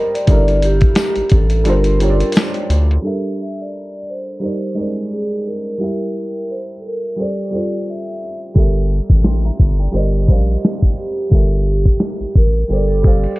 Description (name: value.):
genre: lo-fi hip hop.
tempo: 87 BPM.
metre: 4/4.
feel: swing 56% on 16ths.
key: G dorian.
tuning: A4 = 441 Hz.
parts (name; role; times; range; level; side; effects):
vibraphone with soft mallets; melody; 0.0-13.4 s; G4 to E5; -22 LUFS; equal; low-pass filter.
dark upright piano; accompaniment; 0.0-13.4 s; G3 to C6; -22 LUFS; right 2 dB; low-pass filter.
dusty soul sampler-style drum kit; drums; 0.2-3.0, 8.6-13.4 s; hi-hat, kick drum, snare drum; -14 LUFS; equal; vintage 12-bit sampler grit.
round analog bass; bass; 0.3-3.0, 8.6-13.3 s; G1 to D2; -16 LUFS; equal; none.
tambourine; percussion; 1.0-2.5 s; none; -33 LUFS; left 6 dB; none.
room: light reverb.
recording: dark, warm production, low-pass filter, tape stop.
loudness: -14 LUFS.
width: side -20 dB against mid.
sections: 0.0-3.0 A section; 3.0-13.4 B section.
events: kick muted 1.7-3.0; filter sweep 3.0-13.4.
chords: 0.3 Gm69; 1.7 Gm11; 3.0 Gm69; 4.4 Abmaj9#11/G; 5.8 Gm6; 7.2 F6/G; 8.6 Gm69; 9.9 Ebmaj13/G; 11.3 Gm69; 12.7 F6/G.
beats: | 0.28 0.97 1.66 2.35 | 3.04 3.73 4.42 5.11 | 5.80 6.49 7.18 7.87 | 8.56 9.25 9.94 10.63 | 11.31 12.01 12.70 13.38.